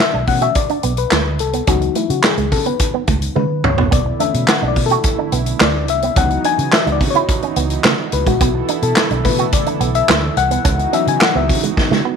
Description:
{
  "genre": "early-eighties boogie funk",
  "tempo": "107 BPM",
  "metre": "4/4",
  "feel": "straight",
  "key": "unclear",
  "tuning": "A4 = 441 Hz",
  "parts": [
    { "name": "FM electric piano with auto-pan", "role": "accompaniment", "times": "0.0-12.0 s", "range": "C#3 to G#5", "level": "-19 LUFS", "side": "left 12 dB", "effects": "none" },
    { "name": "modern studio drum kit", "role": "drums", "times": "0.0-12.0 s", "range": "handclaps, hi-hat, kick drum, snare drum, toms", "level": "-17 LUFS", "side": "right 1 dB", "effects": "none" },
    { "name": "electric guitar with an envelope filter", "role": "riff", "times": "0.1-12.1 s", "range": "G#3 to F#4", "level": "-21 LUFS", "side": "right 15 dB", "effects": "wide subtle chorus" },
    { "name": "vintage muted fingered electric bass", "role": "bass", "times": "0.1-12.0 s", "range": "A#1 to C#3", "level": "-20 LUFS", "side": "equal", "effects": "none" },
    { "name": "warm analog pad", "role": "sustained chords", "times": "3.9-12.2 s", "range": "D3 to A4", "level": "-24 LUFS", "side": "right 15 dB", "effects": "wide subtle chorus" }
  ],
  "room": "light reverb, studio ambience",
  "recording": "1960s-style stereo with parts hard left and right",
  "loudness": "-13 LUFS",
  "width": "side -6 dB against mid",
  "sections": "0.0-12.2 A section",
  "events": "FM electric piano solo 0.0-12.2; drum fill 3.4-3.9, 11.8-12.2",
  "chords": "0.0 Bm11; 1.7 C#m11; 3.9 Bm11; 6.2 C#m11; 8.4 Bm11; 10.7 C#m11"
}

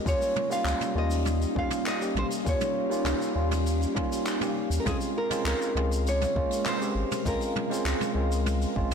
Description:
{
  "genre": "sunset chillout",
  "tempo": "100 BPM",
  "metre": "4/4",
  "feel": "straight",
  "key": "Bb dorian",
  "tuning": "A4 = 440 Hz",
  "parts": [
    { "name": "tine electric piano", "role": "accompaniment", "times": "0.0-8.9 s", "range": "G3 to G4", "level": "-31 LUFS", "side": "moving between left 4 dB and right 4 dB", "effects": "auto-pan, ping-pong delay" },
    { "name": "ethereal airy pad", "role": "sustained chords", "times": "0.0-8.9 s", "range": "Ab3 to F5", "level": "-33 LUFS", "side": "equal", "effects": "ensemble chorus, built-in reverb" },
    { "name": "nylon-string guitar", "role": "melody", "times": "0.1-7.8 s", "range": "Ab4 to F5", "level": "-32 LUFS", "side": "equal", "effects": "vintage 12-bit sampler grit, ping-pong delay" },
    { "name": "warm sub bass", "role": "bass", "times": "0.1-8.9 s", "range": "Ab1 to Eb2", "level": "-28 LUFS", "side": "equal", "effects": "transformer saturation" },
    { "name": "electronic kick drum", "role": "drums", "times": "0.1-8.9 s", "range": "none", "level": "-32 LUFS", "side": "equal", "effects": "none" },
    { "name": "jazz brush drum kit", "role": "drums", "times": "0.1-8.9 s", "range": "handclaps, hi-hat, shaker, toms", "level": "-33 LUFS", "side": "right 1 dB", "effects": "soft clipping on snare" }
  ],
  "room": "light reverb, studio reverb",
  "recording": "blown-out, overdriven recording, overdrive",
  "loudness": "-25 LUFS",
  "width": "side -6 dB against mid",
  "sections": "0.0-8.9 A section",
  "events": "none",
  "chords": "0.1 Eb9; 4.9 Bbm7"
}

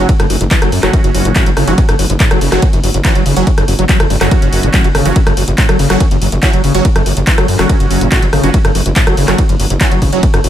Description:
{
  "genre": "driving peak-time techno",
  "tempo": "142 BPM",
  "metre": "4/4",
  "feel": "straight",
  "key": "F# minor",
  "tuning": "A4 = 440 Hz",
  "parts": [
    { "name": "overdriven acid bass", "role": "riff", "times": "0.0-10.5 s", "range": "E2 to F#3", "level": "-16 LUFS", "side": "equal", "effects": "ensemble chorus, sidechain pumping, digital delay" },
    { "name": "supersaw stab", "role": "stabs", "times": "0.0-10.2 s", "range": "F#3 to F#4", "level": "-19 LUFS", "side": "right 4 dB", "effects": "phaser, sidechain pumping, digital delay" },
    { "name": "gritty driven synth bass", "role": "bass", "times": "0.0-10.5 s", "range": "F#1 to F#2", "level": "-15 LUFS", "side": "equal", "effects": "tube saturation, sidechain pumping" },
    { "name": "electronic kick drum", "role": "drums", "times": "0.1-10.3 s", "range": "none", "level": "-12 LUFS", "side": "equal", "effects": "none" },
    { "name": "punchy analog drum machine", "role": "drums", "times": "0.1-10.5 s", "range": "handclaps, hi-hat, ride cymbal, rim click", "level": "-17 LUFS", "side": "equal", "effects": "none" }
  ],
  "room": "little or no reverb",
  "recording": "none",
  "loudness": "-9 LUFS",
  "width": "side -11 dB against mid",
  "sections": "0.0-10.5 A section",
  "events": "none",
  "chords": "0.0 F#5"
}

